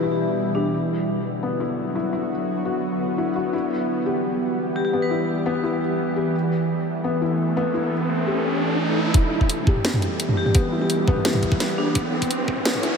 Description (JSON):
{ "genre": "half-time drum and bass", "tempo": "171 BPM", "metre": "4/4", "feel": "half-time", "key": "E minor", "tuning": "A4 = 440 Hz", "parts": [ { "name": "bowed-like drone", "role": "sustained chords", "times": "0.0-13.0 s", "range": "B2 to A4", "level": "-24 LUFS", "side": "right 1 dB", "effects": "built-in reverb, vintage 12-bit sampler grit, sidechain pumping" }, { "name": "felt-muted upright piano", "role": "arpeggios", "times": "0.0-13.0 s", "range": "B3 to G4", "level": "-26 LUFS", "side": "left 4 dB", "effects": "low-pass filter, ping-pong delay" }, { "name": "vibraphone with medium hard mallets", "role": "melody", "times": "0.5-0.8, 4.8-5.4, 10.4-12.0 s", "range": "D4 to B4", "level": "-30 LUFS", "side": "left 2 dB", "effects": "vintage 12-bit sampler grit, tape echo" }, { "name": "riser", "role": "sound effects", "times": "7.4-13.0 s", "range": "none", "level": "-27 LUFS", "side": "right 1 dB", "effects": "none" }, { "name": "deep soft wobble bass", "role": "bass", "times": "9.1-13.0 s", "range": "E1 to B1", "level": "-34 LUFS", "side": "equal", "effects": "none" }, { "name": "drum and bass drum kit", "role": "drums", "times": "9.1-12.9 s", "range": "hi-hat, snare drum, toms", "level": "-25 LUFS", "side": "right 1 dB", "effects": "low-pass filter on hats, low-pass filter on toms, low-pass filter on snare, low-pass filter on cymbals" }, { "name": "electronic kick drum", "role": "drums", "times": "9.1-12.6 s", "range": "none", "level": "-19 LUFS", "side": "equal", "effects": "none" } ], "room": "wet huge ambient reverb, RT60 8.9 s", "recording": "dreamy mix soaked in reverb, high-pass filter", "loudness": "-20 LUFS", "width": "side -6 dB against mid", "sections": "0.0-9.1 A section; 9.1-13.0 B section", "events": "filter sweep on drum 0.0-9.1; filter sweep on synth drone 0.0-9.1; riser 7.4-9.1, 9.1-13.0; build-up 9.1-13.0; filter sweep on felt piano 9.1-13.0; filter sweep 9.1-13.0", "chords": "0.0 Em; 0.7 Bm; 3.5 Em; 6.3 A5; 9.1 Em; 12.0 Bm", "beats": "0.02 0.37 | 0.72 1.08 1.43 1.78 | 2.13 2.48 2.83 3.18 | 3.53 3.88 4.23 4.58 | 4.93 5.29 5.64 5.99 | 6.34 6.69 7.04 7.39 | 7.74 8.09 8.44 8.79 | 9.15 9.50 9.85 10.20 | 10.55 10.90 11.25 11.60 | 11.95 12.30 12.65" }